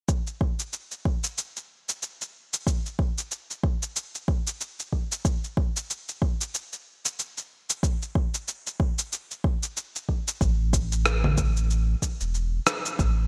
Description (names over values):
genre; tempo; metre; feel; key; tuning
organic downtempo; 93 BPM; 4/4; swing 57% on 16ths; unclear; A4 = 440 Hz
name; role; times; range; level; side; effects
electronic cabasa, rim click and congas; drums; 0.1-13.1 s; none; -30 LUFS; equal; gated reverb
electronic kick drum; drums; 0.1-13.1 s; none; -28 LUFS; equal; none
warm sub bass; bass; 10.4-13.3 s; E1 to A1; -26 LUFS; equal; sidechain pumping
room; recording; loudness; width
little or no reverb; bright 1980s-style digital production; -28 LUFS; mono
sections
0.1-10.4 A section; 10.4-13.3 B section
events
none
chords
none